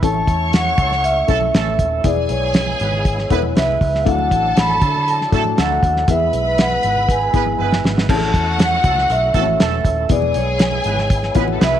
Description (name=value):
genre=uptempo 1960s-style soul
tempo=119 BPM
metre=4/4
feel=straight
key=A major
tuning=A4 = 438 Hz
part: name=vibraphone with soft mallets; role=melody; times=0.0-11.8 s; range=C#5 to B5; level=-19 LUFS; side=equal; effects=none
part: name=warm studio violin section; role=second line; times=0.0-11.8 s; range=A3 to C#6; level=-25 LUFS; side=equal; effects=none
part: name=warm upright piano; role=accompaniment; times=0.0-11.8 s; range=F#3 to B4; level=-24 LUFS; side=left 13 dB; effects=none
part: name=tonewheel organ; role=sustained chords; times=0.0-11.8 s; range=F#3 to E4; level=-31 LUFS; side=equal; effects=fast rotary speaker, chorus vibrato
part: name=vintage muted fingered electric bass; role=bass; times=0.0-11.8 s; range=D#1 to D3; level=-22 LUFS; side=equal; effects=none
part: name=cloth-damped thuddy drum kit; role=drums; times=0.0-11.7 s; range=crash cymbal, hi-hat, kick drum, snare drum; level=-18 LUFS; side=equal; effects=none
part: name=congas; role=percussion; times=0.0-11.8 s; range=none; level=-31 LUFS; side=right 11 dB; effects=none
part: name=mellow horn section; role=second line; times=0.8-11.8 s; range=E3 to B4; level=-26 LUFS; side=right 12 dB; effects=none
room=light reverb, small room ambience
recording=1960s-style stereo with parts hard left and right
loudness=-14 LUFS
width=side -10 dB against mid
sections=0.0-8.1 A section; 8.1-11.8 A section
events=drum fill 7.6-8.1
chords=0.0 A; 2.0 E; 4.1 Dadd9; 6.1 E; 8.1 A; 10.1 E